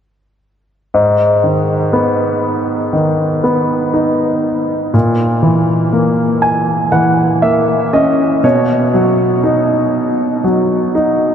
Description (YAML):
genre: pop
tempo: 60 BPM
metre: 4/4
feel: straight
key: G# minor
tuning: A4 = 439 Hz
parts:
  - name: clear baby grand piano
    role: accompaniment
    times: 0.9-11.3 s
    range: G#2 to G#5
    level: -11 LUFS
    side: equal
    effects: none
room: wet huge ambient reverb, RT60 7.5 s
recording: dreamy mix soaked in reverb, lossy compression artefacts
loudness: -11 LUFS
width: side -8 dB against mid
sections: 0.9-11.3 A section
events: grand piano fill 5.9-8.9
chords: 0.9 G#m; 4.9 A#m7b5; 8.4 B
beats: | 0.94 1.94 2.94 3.94 | 4.94 5.94 6.94 7.94 | 8.94 9.94 10.94